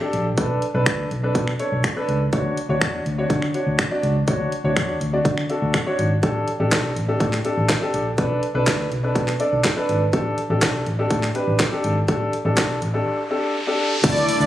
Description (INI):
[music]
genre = dance-pop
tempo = 123 BPM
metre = 4/4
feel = straight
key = unclear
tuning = A4 = 441 Hz
[part]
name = warm concert grand piano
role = accompaniment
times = 0.0-14.3 s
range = A3 to D5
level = -23 LUFS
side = equal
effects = sidechain pumping
[part]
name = vintage muted fingered electric bass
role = bass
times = 0.1-14.5 s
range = G#1 to D3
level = -24 LUFS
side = equal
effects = sidechain pumping
[part]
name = house drum kit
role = drums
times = 0.1-14.5 s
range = crash cymbal, finger snaps, handclaps, hi-hat, kick drum, shaker, snare drum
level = -22 LUFS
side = equal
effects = none
[part]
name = riser and impact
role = sound effects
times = 12.9-14.5 s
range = none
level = -28 LUFS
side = equal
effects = none
[part]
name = soft supersaw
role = sustained chords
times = 14.0-14.5 s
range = D3 to A4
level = -27 LUFS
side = equal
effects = sidechain pumping
[sound]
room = light reverb, digital ambience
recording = recorded on a phone in the room, club reverb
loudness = -19 LUFS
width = side -13 dB against mid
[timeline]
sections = 0.0-14.0 A section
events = riser 12.9-14.0; impact 14.0-14.5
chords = 0.4 Bm7; 2.3 Dmaj7; 6.2 A7sus4; 8.2 Bm7; 10.1 A7sus4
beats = | 0.38 0.86 1.35 1.84 | 2.33 2.82 3.30 3.79 | 4.28 4.77 5.25 5.74 | 6.23 6.72 7.21 7.69 | 8.18 8.67 9.16 9.64 | 10.13 10.62 11.11 11.60 | 12.08 12.57 13.06 13.55 | 14.04